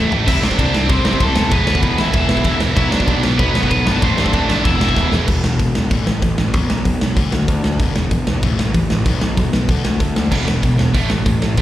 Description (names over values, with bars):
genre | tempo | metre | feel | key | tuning
punk rock | 191 BPM | 4/4 | straight | E minor | A4 = 441 Hz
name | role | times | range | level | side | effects
cranked stack guitar | melody | 0.0-5.1 s | A3 to E5 | -20 LUFS | left 2 dB | overdrive
distorted electric guitar | riff | 0.0-5.3, 10.3-11.6 s | E2 to C4 | -21 LUFS | right 8 dB | overdrive
sludgy distorted guitar | riff | 0.0-11.6 s | E2 to D4 | -22 LUFS | left 5 dB | overdrive, slapback echo
fuzz picked electric bass | bass | 0.0-11.6 s | E1 to G2 | -19 LUFS | equal | overdrive
big rock drum kit | drums | 0.1-11.6 s | crash cymbal, hi-hat, kick drum, ride cymbal, snare drum, splash cymbal, toms | -18 LUFS | equal | none
room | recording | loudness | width
little or no reverb | live gig heard through the venue's PA, recital hall reverb | -14 LUFS | side -13 dB against mid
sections
0.0-5.3 A section; 5.3-11.6 B section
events
drum fill 0.0, 5.0-5.3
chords
0.3 C; 1.4 E5; 2.8 Bm; 4.0 Am; 4.6 E5; 5.9 A5; 6.5 B5; 7.2 D5; 7.8 E5; 8.4 A5; 9.1 B5; 9.7 D5; 10.3 E5; 10.9 A5